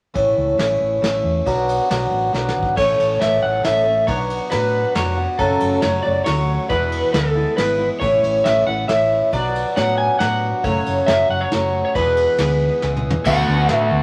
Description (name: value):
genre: folk rock and heartland rock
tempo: 137 BPM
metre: 3/4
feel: straight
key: A major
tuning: A4 = 440 Hz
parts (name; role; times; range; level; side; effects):
- picked old ladder-braced acoustic guitar; accompaniment; 0.1-14.0 s; E2 to A4; -22 LUFS; equal; none
- hollow-body short-scale fingered electric bass; bass; 0.2-14.0 s; E1 to A2; -26 LUFS; equal; none
- soft brush drum kit; drums; 0.2-13.8 s; crash cymbal, hi-hat, kick drum, ride cymbal, snare drum, toms; -29 LUFS; equal; none
- electric slide guitar; melody; 2.8-13.9 s; A4 to G#5; -22 LUFS; equal; none
- hand-pumped harmonium; sustained chords; 13.2-14.0 s; D4 to B4; -33 LUFS; equal; none
- crunchy overdriven guitar; riff; 13.3-14.0 s; D3 to F#4; -23 LUFS; equal; none
room: moderate studio reverb, RT60 0.5 s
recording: vinyl crackle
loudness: -18 LUFS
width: mono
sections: 0.2-2.8 A section; 2.8-13.3 B section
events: drum fill 2.3-2.8, 12.8-13.3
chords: 0.2 A; 1.5 Bm; 2.8 A; 4.1 Bm; 5.4 F#m; 6.7 E; 8.0 A; 9.3 Bm; 10.6 F#m; 11.9 E; 13.3 D6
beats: | 0.15 0.59 1.03 | 1.46 1.90 2.34 | 2.77 3.21 3.65 | 4.08 4.52 4.96 | 5.39 5.83 6.27 | 6.71 7.14 7.58 | 8.02 8.45 8.89 | 9.33 9.76 10.20 | 10.64 11.07 11.51 | 11.95 12.39 12.82 | 13.26 13.70